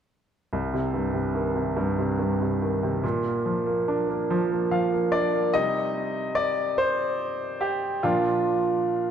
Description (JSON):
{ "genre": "pop", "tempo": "48 BPM (dotted quarters)", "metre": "6/8", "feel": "straight", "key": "C minor", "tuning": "A4 = 441 Hz", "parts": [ { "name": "bright grand piano", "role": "solo", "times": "0.5-9.1 s", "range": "C2 to F5", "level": "-23 LUFS", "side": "equal", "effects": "slapback echo" } ], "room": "moderate concert hall reverb, RT60 2.3 s", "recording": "none", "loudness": "-23 LUFS", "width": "side -8 dB against mid", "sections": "0.5-5.5 A section; 5.5-9.1 B section", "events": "grand piano fill 4.3-5.5; grand piano solo 5.5-9.1", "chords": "0.5 Cm; 3.0 Bb; 5.5 Cm; 8.0 Bb" }